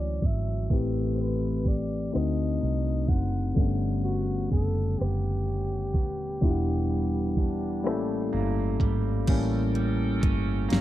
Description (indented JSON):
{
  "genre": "slow six-eight R&B",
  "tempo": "42 BPM (dotted quarters)",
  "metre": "6/8",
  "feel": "straight",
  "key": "unclear",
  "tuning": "A4 = 438 Hz",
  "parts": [
    { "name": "warm flugelhorn", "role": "melody", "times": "0.0-8.3 s", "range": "F#4 to F#5", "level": "-36 LUFS", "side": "equal", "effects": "none" },
    { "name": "electric guitar at the edge of break-up", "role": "second line", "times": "0.0-10.8 s", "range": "A2 to G4", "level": "-35 LUFS", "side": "right 10 dB", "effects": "spring reverb" },
    { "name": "barky tine electric piano", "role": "accompaniment", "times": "0.0-10.8 s", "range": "D3 to F#5", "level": "-30 LUFS", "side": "left 5 dB", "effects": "none" },
    { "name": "vintage muted fingered electric bass", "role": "bass", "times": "0.0-10.8 s", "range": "Eb1 to D2", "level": "-29 LUFS", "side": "right 1 dB", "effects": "none" },
    { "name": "smooth R&B drum kit", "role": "drums", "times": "0.2-10.8 s", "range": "crash cymbal, hi-hat, kick drum, rim click, snare drum", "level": "-25 LUFS", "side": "right 1 dB", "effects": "none" },
    { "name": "bright tonewheel organ", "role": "sustained chords", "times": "9.3-10.8 s", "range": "C#4 to G5", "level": "-38 LUFS", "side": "right 3 dB", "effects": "slow rotary speaker" }
  ],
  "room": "little or no reverb",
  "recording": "dry, close 1970s-style studio recording, low-pass filter",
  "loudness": "-24 LUFS",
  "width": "side -14 dB against mid",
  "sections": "0.0-9.3 A section; 9.3-10.8 B section",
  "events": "filter sweep 0.0-9.3; tine electric piano solo 9.3-10.8",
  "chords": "0.0 Dmaj9; 0.7 Am9; 2.1 D7b9; 3.6 Gmaj9#11; 6.4 Em9; 7.8 A7b9"
}